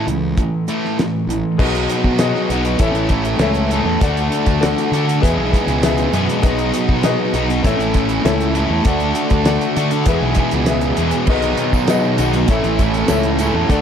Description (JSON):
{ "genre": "classic rock", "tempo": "99 BPM", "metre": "4/4", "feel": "straight", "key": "unclear", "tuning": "A4 = 440 Hz", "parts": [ { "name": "distorted electric guitar", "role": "riff", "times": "0.0-13.8 s", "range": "E2 to G#4", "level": "-21 LUFS", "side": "right 11 dB", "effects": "distortion" }, { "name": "sludgy distorted guitar", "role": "riff", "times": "0.0-13.8 s", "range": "E2 to A4", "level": "-21 LUFS", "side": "left 8 dB", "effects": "overdrive" }, { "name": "fuzz fingered electric bass", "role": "bass", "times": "0.0-13.8 s", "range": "A1 to D3", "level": "-21 LUFS", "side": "equal", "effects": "overdrive" }, { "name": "damped 70s drum kit", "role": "drums", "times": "0.1-13.8 s", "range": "crash cymbal, hi-hat, kick drum, snare drum", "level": "-20 LUFS", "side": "equal", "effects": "none" }, { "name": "clear grand piano", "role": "accompaniment", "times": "1.6-13.8 s", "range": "G#4 to F#5", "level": "-23 LUFS", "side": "left 8 dB", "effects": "none" }, { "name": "biting overdriven guitar", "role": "riff", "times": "11.3-13.8 s", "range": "A2 to F#4", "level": "-22 LUFS", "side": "right 2 dB", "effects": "none" }, { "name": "tambourine", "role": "percussion", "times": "11.3-13.8 s", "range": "none", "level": "-38 LUFS", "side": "right 13 dB", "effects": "none" } ], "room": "light reverb, small room ambience", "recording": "lossy compression artefacts", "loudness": "-14 LUFS", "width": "side -8 dB against mid", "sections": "0.0-1.6 A section; 1.6-13.8 B section", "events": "none", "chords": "0.0 A; 1.6 B6; 2.8 A; 4.0 D; 5.2 E; 6.4 B6; 7.7 A; 8.9 D; 10.1 E; 11.3 B6; 12.5 A" }